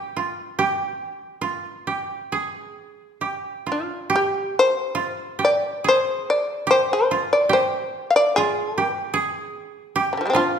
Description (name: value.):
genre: japanese traditional, Japanese chamber music.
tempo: 64-77 BPM.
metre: 4/4.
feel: rubato.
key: G in sen.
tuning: A4 = 441 Hz.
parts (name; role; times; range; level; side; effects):
shamisen; melody; 0.0-10.6 s; C3 to F5; -19 LUFS; left 1 dB; none.
koto; second line; 0.0-10.6 s; F4 to Ab4; -25 LUFS; right 4 dB; none.
room: moderate scoring stage reverb, RT60 1.6 s.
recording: minimal, uncompressed stereo recording.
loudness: -20 LUFS.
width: side -7 dB against mid.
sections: 0.0-4.1 A section; 4.1-10.6 B section.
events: none.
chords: none.